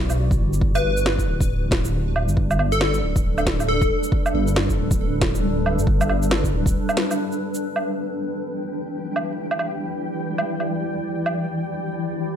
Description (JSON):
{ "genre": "future garage", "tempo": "137 BPM", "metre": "4/4", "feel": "swing 60% on 16ths", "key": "E minor", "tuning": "A4 = 440 Hz", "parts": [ { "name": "granular cloud pad", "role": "sustained chords", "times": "0.1-12.4 s", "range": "E3 to D5", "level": "-26 LUFS", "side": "equal", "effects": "built-in reverb, sidechain pumping" }, { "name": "dark detuned saw bass", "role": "bass", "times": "0.0-6.8 s", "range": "D1 to B1", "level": "-23 LUFS", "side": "equal", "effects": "sidechain pumping" }, { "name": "electronic shaker, woodblock and snare drum", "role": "drums", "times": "0.1-11.3 s", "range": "none", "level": "-25 LUFS", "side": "right 1 dB", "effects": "overdrive, low-pass filter on perc, low-pass filter on snare, low-pass filter on room" }, { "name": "electronic kick drum", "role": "drums", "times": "0.3-6.7 s", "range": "none", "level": "-23 LUFS", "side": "equal", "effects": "overdrive" }, { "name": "plucky unison lead", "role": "melody", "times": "0.8-4.1 s", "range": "A4 to B4", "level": "-26 LUFS", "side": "left 2 dB", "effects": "phaser, ping-pong delay" }, { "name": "flickering grainy texture", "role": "texture", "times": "8.3-12.4 s", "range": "G3 to G5", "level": "-32 LUFS", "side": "left 1 dB", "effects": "built-in reverb" } ], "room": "light reverb", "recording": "none", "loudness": "-20 LUFS", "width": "side -9 dB against mid", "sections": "0.0-7.6 A section; 7.6-12.4 B section", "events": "break 6.8-7.6", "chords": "0.0 Em9; 0.6 Gadd9; 7.6 Em7", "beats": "0.18 | 0.62 1.06 1.50 1.94 | 2.37 2.81 3.25 3.69 | 4.12 4.56 5.00 5.44 | 5.88 6.31 6.75 7.19 | 7.63 8.07 8.50 8.94 | 9.38 9.82 10.26 10.69 | 11.13 11.57 12.01" }